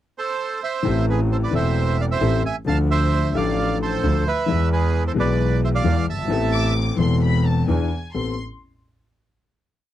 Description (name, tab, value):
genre	tango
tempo	132 BPM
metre	4/4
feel	rubato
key	A harmonic minor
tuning	A4 = 440 Hz
part	bandoneon	melody	0.2-6.7 s	G#4 to A5	-24 LUFS	right 5 dB	none
part	warm concert grand piano	accompaniment	0.8-8.3 s	E1 to A4	-22 LUFS	left 5 dB	none
part	clear double bass	bass	0.8-8.3 s	E1 to E2	-22 LUFS	right 2 dB	none
part	warm studio violin section	second line	6.5-8.4 s	G#5 to D6	-30 LUFS	left 4 dB	none
room	little or no reverb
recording	dry, close 1970s-style studio recording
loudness	-18 LUFS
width	side -12 dB against mid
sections	0.0-0.8 pickup bar; 0.8-8.1 A section; 8.1-9.9 final chord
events	none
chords	0.0 Am; 2.7 Dm; 4.5 E; 6.3 Amadd9; 7.7 E7; 8.1 Amadd9